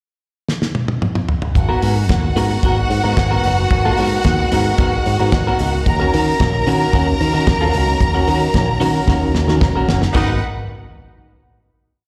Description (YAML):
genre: disco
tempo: 112 BPM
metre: 4/4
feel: straight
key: G# minor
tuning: A4 = 440 Hz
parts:
  - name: damped 70s drum kit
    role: drums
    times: 0.5-10.3 s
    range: crash cymbal, hi-hat, kick drum, snare drum, toms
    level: -21 LUFS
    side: equal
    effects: none
  - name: clear studio string section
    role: second line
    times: 1.5-10.4 s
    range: D#4 to A#5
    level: -24 LUFS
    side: equal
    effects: slapback echo
  - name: clean electric guitar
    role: accompaniment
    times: 1.6-10.3 s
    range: B3 to A#4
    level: -24 LUFS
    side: equal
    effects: slapback echo
  - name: dark French horn section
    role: sustained chords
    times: 1.6-10.4 s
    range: D#3 to F#4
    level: -28 LUFS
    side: equal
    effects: none
  - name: picked electric bass with an envelope filter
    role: bass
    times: 1.6-10.4 s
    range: E1 to D#3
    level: -20 LUFS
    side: equal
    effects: none
room: small room ambience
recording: live gig heard through the venue's PA, recital hall reverb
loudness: -16 LUFS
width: mono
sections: 0.0-1.6 pickup bar; 1.6-10.2 groove; 10.2-12.1 final chord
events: drum fill 0.5-1.6, 9.1-10.2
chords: 0.0 N.C.; 1.6 G#m9; 5.9 D#m7; 10.2 G#m9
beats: 0.48 1.02 | 1.56 2.09 2.63 3.17 | 3.71 4.25 4.78 5.32 | 5.86 6.39 6.93 7.47 | 8.00 8.54 9.08 9.62 | 10.15